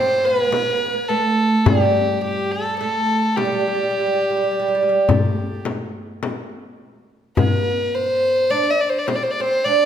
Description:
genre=Arabic maqam ensemble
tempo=105 BPM (eighths)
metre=10/8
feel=straight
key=unclear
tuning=A4 = 440 Hz
part: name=warm violin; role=melody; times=0.0-9.9 s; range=G4 to Eb5+49c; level=-20 LUFS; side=equal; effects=none
part: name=oud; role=second line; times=0.0-9.9 s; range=G3 to D4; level=-21 LUFS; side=right 3 dB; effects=none
part: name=darbuka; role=percussion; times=0.5-9.3 s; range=none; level=-23 LUFS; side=left 3 dB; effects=none
part: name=frame drum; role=percussion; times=0.5-9.3 s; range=none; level=-26 LUFS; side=left 4 dB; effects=none
room=wet recital hall reverb, RT60 1.8 s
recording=none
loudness=-17 LUFS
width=side -9 dB against mid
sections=0.0-9.9 A section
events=none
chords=none

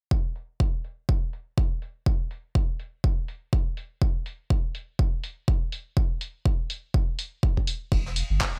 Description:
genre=deep house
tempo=123 BPM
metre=4/4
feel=swing 59% on 16ths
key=E minor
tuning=A4 = 440 Hz
part: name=electronic kick drum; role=drums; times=0.1-8.5 s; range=none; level=-26 LUFS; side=equal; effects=none
part: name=deep house drum kit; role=drums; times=0.4-8.5 s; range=handclaps, hi-hat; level=-34 LUFS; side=equal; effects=low-pass filter on hats, low-pass filter on snare, low-pass filter on room
part: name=warm sub bass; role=bass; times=7.9-8.6 s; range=D1 to G1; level=-30 LUFS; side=equal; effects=sidechain pumping
part: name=jazz brush drum kit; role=drums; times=7.9-8.5 s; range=ride cymbal, snare drum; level=-41 LUFS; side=equal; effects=high-pass filter on cymbals, high-pass filter on snare, high-pass filter on room
room=little or no reverb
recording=none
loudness=-28 LUFS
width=mono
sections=0.1-8.6 A section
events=filter sweep on drum 0.1-8.6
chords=none

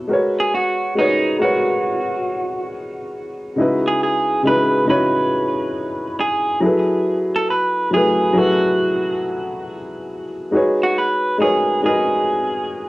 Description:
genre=hip hop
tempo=69 BPM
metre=4/4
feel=swing 65% on 16ths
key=G# minor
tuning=A4 = 439 Hz
part: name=dark upright piano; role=accompaniment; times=0.0-12.9 s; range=C#3 to D#5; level=-18 LUFS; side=left 1 dB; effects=cassette tape
part: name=electric guitar through a small old amp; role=melody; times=0.4-12.9 s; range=D#4 to B4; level=-20 LUFS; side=right 1 dB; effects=tape echo
room=moderate small room reverb, RT60 0.6 s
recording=worn, warbling old tape, cassette tape, warbly pitch drift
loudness=-16 LUFS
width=side -19 dB against mid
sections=0.0-12.9 A section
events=none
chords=0.1 G#m11; 3.6 C#m11; 6.6 F#m11; 10.5 G#m11

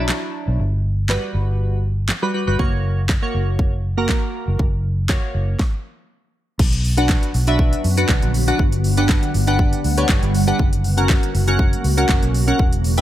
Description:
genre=dance-pop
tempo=120 BPM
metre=4/4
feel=straight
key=unclear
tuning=A4 = 439 Hz
part: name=glassy digital keys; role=accompaniment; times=0.0-13.0 s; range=F#3 to F#5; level=-22 LUFS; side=equal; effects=chorus, phaser, sidechain pumping
part: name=vintage muted fingered electric bass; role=bass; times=0.0-13.0 s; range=E1 to F#2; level=-19 LUFS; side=equal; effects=sidechain pumping
part: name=pop drum kit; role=drums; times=0.1-13.0 s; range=crash cymbal, handclaps, hi-hat, kick drum, snare drum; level=-19 LUFS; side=equal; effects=none
part: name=glassy FM pad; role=sustained chords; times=7.4-13.0 s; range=C#3 to F#5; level=-25 LUFS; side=equal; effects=ensemble chorus, built-in reverb, sidechain pumping
room=little or no reverb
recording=none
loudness=-16 LUFS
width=side -13 dB against mid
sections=0.0-6.6 A section; 6.6-13.0 B section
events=stop 5.6-6.6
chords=0.0 Bm; 0.6 Gmaj7; 2.6 F#; 6.6 Bm; 8.6 Gmaj7; 10.6 F#

